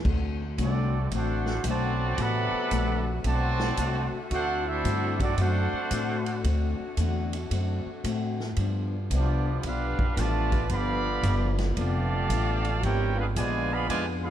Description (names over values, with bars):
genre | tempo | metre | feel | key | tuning
jazz, big band swing | 113 BPM | 4/4 | swing 66% on 8ths | unclear | A4 = 440 Hz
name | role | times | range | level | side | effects
picked steel-string acoustic guitar | accompaniment | 0.0-14.3 s | G2 to F#4 | -34 LUFS | left 6 dB | none
bright saxophone section | sustained chords | 0.0-14.3 s | D3 to F#4 | -39 LUFS | left 3 dB | none
upright bass | bass | 0.0-14.3 s | F1 to A2 | -28 LUFS | equal | none
swinging big-band drum kit | drums | 0.0-14.1 s | crash cymbal, hi-hat, kick drum, ride cymbal, snare drum | -34 LUFS | right 1 dB | none
clear trumpet section | melody | 0.6-14.3 s | B3 to B5 | -30 LUFS | right 3 dB | none
bright trombone section | second line | 0.6-14.3 s | C3 to G4 | -34 LUFS | right 2 dB | none
room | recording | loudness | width
light reverb | dark, warm production | -25 LUFS | side -10 dB against mid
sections
0.0-14.3 A section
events
none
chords
0.0 D7; 8.6 G7; 12.8 G#dim7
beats
| 0.05 0.58 1.11 1.65 | 2.18 2.71 3.25 3.78 | 4.31 4.84 5.38 5.91 | 6.44 6.97 7.51 8.04 | 8.57 9.11 9.64 10.17 | 10.70 11.23 11.77 12.30 | 12.83 13.36 13.89